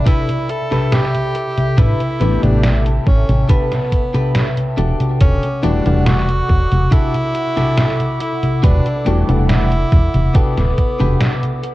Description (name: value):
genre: vaporwave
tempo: 70 BPM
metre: 4/4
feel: straight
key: E minor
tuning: A4 = 441 Hz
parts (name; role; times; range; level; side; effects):
- bright tenor saxophone; melody; 0.0-11.6 s; B3 to A4; -22 LUFS; equal; tape echo
- warbly tape-like pad; sustained chords; 0.0-11.7 s; A4 to D6; -27 LUFS; equal; chorus, built-in reverb
- chorused synth bass; bass; 0.0-11.2 s; D1 to A1; -16 LUFS; equal; tube saturation
- clean electric guitar; riff; 0.1-11.7 s; D4 to B4; -26 LUFS; left 1 dB; wide subtle chorus, tape echo
- detuned 8-bit digital drum machine; drums; 0.1-11.7 s; congas, hi-hat, snare drum; -18 LUFS; equal; tape echo
- electronic kick drum; drums; 0.1-11.0 s; none; -14 LUFS; equal; none
- warm electric grand piano; accompaniment; 2.2-9.7 s; E3 to F#5; -21 LUFS; left 2 dB; analog chorus, tape echo
room: light reverb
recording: echo-heavy mix, cassette tape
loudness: -13 LUFS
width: side -17 dB against mid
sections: 0.0-11.7 A section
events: none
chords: 0.0 A9sus4; 4.8 Em11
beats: 0.07 0.92 | 1.78 2.64 3.49 4.35 | 5.21 6.07 6.92 7.78 | 8.64 9.49 10.35 11.21